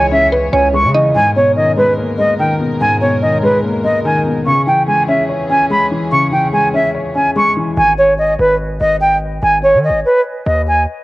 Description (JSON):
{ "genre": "hip hop", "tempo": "145 BPM", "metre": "4/4", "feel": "half-time", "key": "G# minor", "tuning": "A4 = 439 Hz", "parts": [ { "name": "silver concert flute", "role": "melody", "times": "0.0-10.8 s", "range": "B4 to C#6", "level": "-13 LUFS", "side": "right 1 dB", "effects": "none" }, { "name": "mallet-like synth pluck", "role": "second line", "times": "0.0-1.1 s", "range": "B4 to D#5", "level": "-17 LUFS", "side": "right 2 dB", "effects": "chorus, cassette tape, analog delay" }, { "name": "dark grand piano", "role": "accompaniment", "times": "0.0-7.8 s", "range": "G#2 to C#5", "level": "-17 LUFS", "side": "left 2 dB", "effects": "cassette tape" }, { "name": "dark studio string section", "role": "sustained chords", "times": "0.0-7.7 s", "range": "B2 to C#5", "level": "-26 LUFS", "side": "equal", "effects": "cassette tape" }, { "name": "hard-hitting 808-style bass", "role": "bass", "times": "0.0-1.1, 7.8-10.9 s", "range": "G#1 to D#3", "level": "-19 LUFS", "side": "equal", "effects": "none" } ], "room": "moderate spring reverb, RT60 2.9 s", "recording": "home recording on cassette", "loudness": "-11 LUFS", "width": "side -18 dB against mid", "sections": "0.0-1.2 A section; 1.2-7.8 B section; 7.8-11.0 C section", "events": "none", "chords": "0.0 C#m; 1.2 G#madd9; 4.5 C#m; 7.8 G#5", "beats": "0.33 0.74 | 1.15 1.57 1.98 2.39 | 2.81 3.22 3.63 4.05 | 4.46 4.88 5.29 5.70 | 6.12 6.53 6.95 7.36 | 7.77 8.19 8.60 9.01 | 9.43 9.84 10.26 10.67" }